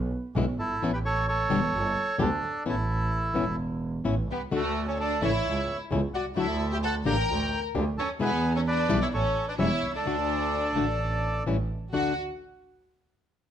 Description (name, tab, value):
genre	tango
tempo	130 BPM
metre	4/4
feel	rubato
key	D major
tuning	A4 = 441 Hz
part	clear double bass	bass	0.0-12.1 s	E1 to E2	-30 LUFS	right 2 dB	none
part	flamenco guitar	accompaniment	0.4-12.1 s	B2 to G4	-29 LUFS	left 4 dB	none
part	bandoneon	melody	0.6-12.2 s	D4 to Bb5	-30 LUFS	right 2 dB	plate reverb
part	warm studio violin section	second line	4.3-12.2 s	A3 to Bb4	-31 LUFS	left 2 dB	none
room	moderate studio reverb, RT60 0.9 s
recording	none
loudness	-25 LUFS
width	side -9 dB against mid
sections	0.0-11.9 A section; 11.9-13.5 B section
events	none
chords	0.0 E5/B; 0.8 Aadd9; 1.7 Gsus2; 2.7 Aadd9; 4.5 D; 5.5 A/C# (rootless); 6.4 Dadd9; 7.3 Gm/D; 8.2 E7; 9.1 A; 10.1 D5; 11.5 A7; 11.9 D